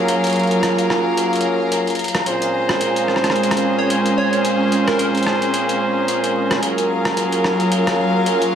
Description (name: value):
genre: glitch hop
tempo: 110 BPM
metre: 4/4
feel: swing 57% on 16ths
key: Bb minor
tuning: A4 = 439 Hz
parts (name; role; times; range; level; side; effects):
- warbly tape-like pad; sustained chords; 0.0-8.6 s; Gb3 to Bb4; -22 LUFS; right 2 dB; chorus, built-in reverb
- bright horn section; stabs; 0.0-8.6 s; Bb2 to C5; -19 LUFS; equal; vintage 12-bit sampler grit, low-pass filter, ping-pong delay
- clear symphonic string section; texture; 0.0-8.6 s; Gb3 to Bb5; -23 LUFS; equal; none
- boom bap sampler-style drum kit; drums; 0.1-8.5 s; hi-hat, rim click; -23 LUFS; equal; none
- plucky unison lead; melody; 3.8-5.1 s; Bb4 to Db5; -24 LUFS; equal; lush chorus, cassette tape, ping-pong delay
room: moderate lush hall reverb, RT60 1.8 s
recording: vinyl crackle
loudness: -16 LUFS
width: side -8 dB against mid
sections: 0.0-8.6 A section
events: filter sweep on ambient pad 0.0-8.6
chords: 0.0 Gbmaj7; 2.3 Bbm7; 6.6 Gbmaj7